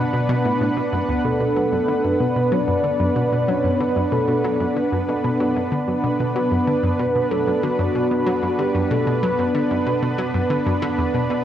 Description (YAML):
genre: ambient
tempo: 94 BPM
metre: 4/4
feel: straight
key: B minor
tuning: A4 = 440 Hz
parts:
  - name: lush unison pad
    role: sustained chords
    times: 0.0-11.4 s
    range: B3 to F#5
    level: -21 LUFS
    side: right 1 dB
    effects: chorus
  - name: analog pluck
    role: riff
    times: 0.0-11.4 s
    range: D2 to F#3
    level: -23 LUFS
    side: equal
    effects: chorus, analog delay
  - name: soft octave-layered synth lead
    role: melody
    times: 1.2-9.9 s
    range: F#4 to D5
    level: -24 LUFS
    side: equal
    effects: chorus, analog delay
room: wet concert hall reverb, RT60 2.4 s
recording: worn, warbling old tape, cassette tape, warbly pitch drift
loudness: -18 LUFS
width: side -10 dB against mid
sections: 0.0-11.4 A section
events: none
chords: 0.0 Bm7